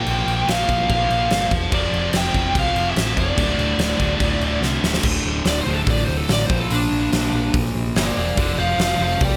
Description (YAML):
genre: hard rock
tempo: 144 BPM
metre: 4/4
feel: straight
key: D minor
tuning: A4 = 440 Hz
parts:
  - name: lead guitar through a small cranked amp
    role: melody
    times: 0.0-9.4 s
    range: D4 to G5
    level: -25 LUFS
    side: equal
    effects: overdrive, digital delay
  - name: scooped high-gain guitar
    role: riff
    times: 0.0-5.0 s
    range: D2 to Bb3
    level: -27 LUFS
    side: equal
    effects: distortion
  - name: sludgy distorted guitar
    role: riff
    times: 0.0-9.4 s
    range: D2 to Bb3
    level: -28 LUFS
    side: equal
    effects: overdrive
  - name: hollow-body short-scale fingered electric bass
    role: bass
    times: 0.1-9.4 s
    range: D1 to C2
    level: -27 LUFS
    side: equal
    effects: none
  - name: huge arena drum kit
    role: drums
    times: 0.1-9.3 s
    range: crash cymbal, hi-hat, kick drum, snare drum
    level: -25 LUFS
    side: equal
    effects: none
room: small room ambience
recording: none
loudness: -20 LUFS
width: mono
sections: 0.0-5.0 A section; 5.0-9.4 B section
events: drum fill 4.6-5.0; lead electric guitar solo 5.0-9.4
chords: 0.0 Bb5; 1.7 F5; 3.4 D5; 6.5 Bb; 8.4 F5